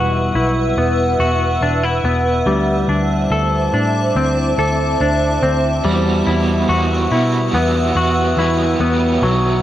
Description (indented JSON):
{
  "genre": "dream pop",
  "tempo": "71 BPM",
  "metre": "4/4",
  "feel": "straight",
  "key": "E minor",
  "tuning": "A4 = 438 Hz",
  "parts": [
    { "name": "granular cloud pad", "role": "sustained chords", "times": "0.0-9.6 s", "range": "B4 to E6", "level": "-20 LUFS", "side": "right 1 dB", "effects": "built-in reverb, cassette tape" },
    { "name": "semi-hollow electric guitar", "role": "arpeggios", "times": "0.0-9.6 s", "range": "F#3 to A4", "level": "-18 LUFS", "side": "left 2 dB", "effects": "wide subtle chorus, cassette tape, analog delay" },
    { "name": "vintage muted picked electric bass", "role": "bass", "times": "0.0-9.6 s", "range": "E1 to B2", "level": "-19 LUFS", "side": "equal", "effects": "none" },
    { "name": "overdriven electric guitar", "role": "accompaniment", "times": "5.8-9.6 s", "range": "B2 to F#4", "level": "-21 LUFS", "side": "right 5 dB", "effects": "tremolo, lush chorus, cassette tape" }
  ],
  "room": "light reverb, digital ambience",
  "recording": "home recording on cassette",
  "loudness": "-14 LUFS",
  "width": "side -12 dB against mid",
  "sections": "0.0-9.6 A section",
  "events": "none",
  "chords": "0.0 Emadd9; 2.5 D7sus4; 5.8 Emadd9"
}